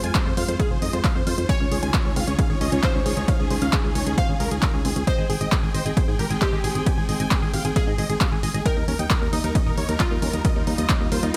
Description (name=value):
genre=uplifting trance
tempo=134 BPM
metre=4/4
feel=straight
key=unclear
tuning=A4 = 440 Hz
part: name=big supersaw lead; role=melody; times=0.0-11.4 s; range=Eb4 to Ab5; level=-33 LUFS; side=equal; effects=sidechain pumping, tape echo
part: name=dark studio string section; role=sustained chords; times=0.0-11.4 s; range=Db3 to G5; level=-34 LUFS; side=equal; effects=sidechain pumping
part: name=tight sequenced synth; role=arpeggios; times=0.0-11.4 s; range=C4 to Ab5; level=-35 LUFS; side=equal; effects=chorus, sidechain pumping, tape echo
part: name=solid FM bass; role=bass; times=0.0-11.3 s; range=Eb1 to Ab2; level=-28 LUFS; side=equal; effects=sidechain pumping
part: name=punchy analog drum machine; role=drums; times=0.0-11.4 s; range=handclaps, hi-hat, ride cymbal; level=-32 LUFS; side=equal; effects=overdrive, sidechain pumping on hats, sidechain pumping on cymbals
part: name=electronic kick drum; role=drums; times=0.1-11.0 s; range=none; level=-25 LUFS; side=equal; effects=overdrive
part: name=glassy wavetable pluck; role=second line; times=0.6-11.4 s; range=F4 to F5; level=-34 LUFS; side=equal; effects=chorus, dub echo
room=digital ambience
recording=none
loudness=-22 LUFS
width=mono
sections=0.0-11.4 A section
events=none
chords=0.0 Fm; 1.5 Dbadd9; 5.1 Abmaj7; 8.7 Eb